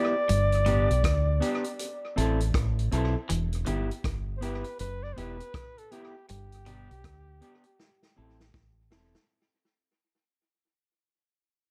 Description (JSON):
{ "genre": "roots reggae", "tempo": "80 BPM", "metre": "4/4", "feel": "swing 62% on 16ths", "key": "unclear", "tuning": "A4 = 439 Hz", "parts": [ { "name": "mellow flugelhorn", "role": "melody", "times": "0.0-8.5 s", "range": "G4 to D5", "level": "-33 LUFS", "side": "equal", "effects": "tape echo" }, { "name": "mellow electric guitar", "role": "accompaniment", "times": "0.0-9.1 s", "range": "B3 to A4", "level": "-36 LUFS", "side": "equal", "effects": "tape echo" }, { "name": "electric guitar at the edge of break-up", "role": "arpeggios", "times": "0.3-6.8 s", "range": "G2 to E3", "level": "-36 LUFS", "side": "equal", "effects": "none" }, { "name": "deep dub fingered electric bass", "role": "bass", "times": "0.3-9.1 s", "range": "E1 to D2", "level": "-30 LUFS", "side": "equal", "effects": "none" }, { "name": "vintage drum kit", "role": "drums", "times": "0.3-9.3 s", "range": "hi-hat, kick drum, rim click, snare drum", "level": "-35 LUFS", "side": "equal", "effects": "tape echo" } ], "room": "light reverb", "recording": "none", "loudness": "-28 LUFS", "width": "mono", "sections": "0.0-9.3 A section", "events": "fade-out 0.0-9.3; drum fill 7.8-9.3", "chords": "0.3 G; 1.8 Am; 3.3 Em; 6.3 G; 7.8 Am" }